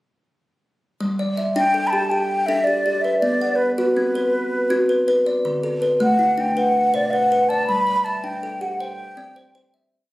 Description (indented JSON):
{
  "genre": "southern african traditional, mbira-style interlocking cycle",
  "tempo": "108 BPM (dotted quarters)",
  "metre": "12/8",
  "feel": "straight",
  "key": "G major",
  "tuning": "A4 = 440 Hz",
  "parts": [
    { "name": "kalimba", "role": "arpeggios", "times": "1.0-10.1 s", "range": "B2 to F#5", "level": "-21 LUFS", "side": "equal", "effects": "none" },
    { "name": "mellow hollow concert flute", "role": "melody", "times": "1.6-9.7 s", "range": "B4 to B5", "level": "-20 LUFS", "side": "equal", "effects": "none" }
  ],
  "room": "wet studio ambience, RT60 0.5 s",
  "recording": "recorded on a phone in the room, studio reverb, compression",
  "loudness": "-18 LUFS",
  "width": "side -17 dB against mid",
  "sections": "1.0-9.9 A section",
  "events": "fade-out 7.7-9.9",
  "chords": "1.0 G5; 3.2 B5; 5.4 D; 6.6 Bm; 7.7 G; 8.8 C",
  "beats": "| 1.01 1.57 2.12 2.67 | 3.23 3.78 4.34 4.89 | 5.45 6.01 6.56 7.12 | 7.68 8.24 8.80 9.36"
}